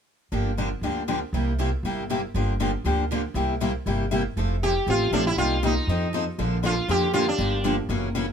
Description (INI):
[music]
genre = acoustic string swing (jazz manouche)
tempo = 238 BPM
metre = 4/4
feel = swing 55% on 8ths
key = F major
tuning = A4 = 440 Hz
[part]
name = picked steel-string acoustic guitar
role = accompaniment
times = 0.3-8.3 s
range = C3 to A4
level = -28 LUFS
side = left 5 dB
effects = none
[part]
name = picked steel-string acoustic guitar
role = accompaniment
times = 0.3-8.3 s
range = C3 to Bb4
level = -30 LUFS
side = right 5 dB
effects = none
[part]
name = upright bass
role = bass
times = 0.3-8.3 s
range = F1 to F2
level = -27 LUFS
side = equal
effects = none
[part]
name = sitar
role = melody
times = 4.6-7.8 s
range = D4 to G4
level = -25 LUFS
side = right 1 dB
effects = none
[sound]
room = light reverb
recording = minimal, uncompressed stereo recording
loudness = -22 LUFS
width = side -7 dB against mid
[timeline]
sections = 0.3-4.4 A section; 4.4-8.3 B section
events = none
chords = 0.3 Gm7; 1.3 C7; 2.3 Gm7; 3.4 C7; 4.4 Fmaj9; 5.4 Cm7; 5.9 F7; 6.4 Bbmaj7; 7.4 Gm7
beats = | 0.33 0.58 0.83 1.09 | 1.34 1.59 1.84 2.10 | 2.35 2.60 2.85 3.11 | 3.36 3.61 3.86 4.12 | 4.37 4.62 4.87 5.12 | 5.38 5.63 5.88 6.13 | 6.38 6.64 6.89 7.14 | 7.39 7.65 7.90 8.15